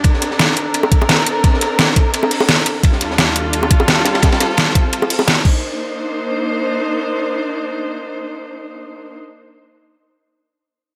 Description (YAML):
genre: liquid drum and bass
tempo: 172 BPM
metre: 4/4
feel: straight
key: C dorian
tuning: A4 = 440 Hz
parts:
  - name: rich chamber string section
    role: sustained chords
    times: 0.0-9.2 s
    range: Eb2 to C5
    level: -22 LUFS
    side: equal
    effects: sidechain pumping
  - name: crunchy breakbeat drum kit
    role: drums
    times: 0.0-5.4 s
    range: hi-hat, ride cymbal, snare drum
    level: -24 LUFS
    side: equal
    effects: high-pass filter on cymbals, high-pass filter on hats, high-pass filter on snare, high-pass filter on room
  - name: electronic kick drum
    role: drums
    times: 0.0-5.5 s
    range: none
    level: -15 LUFS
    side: equal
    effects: overdrive
  - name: pop drum kit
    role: drums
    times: 0.0-5.5 s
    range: crash cymbal, hi-hat, snare drum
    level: -18 LUFS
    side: equal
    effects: overdrive
  - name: bongos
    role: percussion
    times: 0.8-5.3 s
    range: none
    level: -22 LUFS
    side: equal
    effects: none
room: light reverb, small room ambience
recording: none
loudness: -16 LUFS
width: mono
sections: 0.0-5.6 A section; 5.6-8.4 B section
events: none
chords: 0.0 Bbmaj9; 2.8 Ebmaj9#11; 4.2 G9sus4; 5.5 Cm9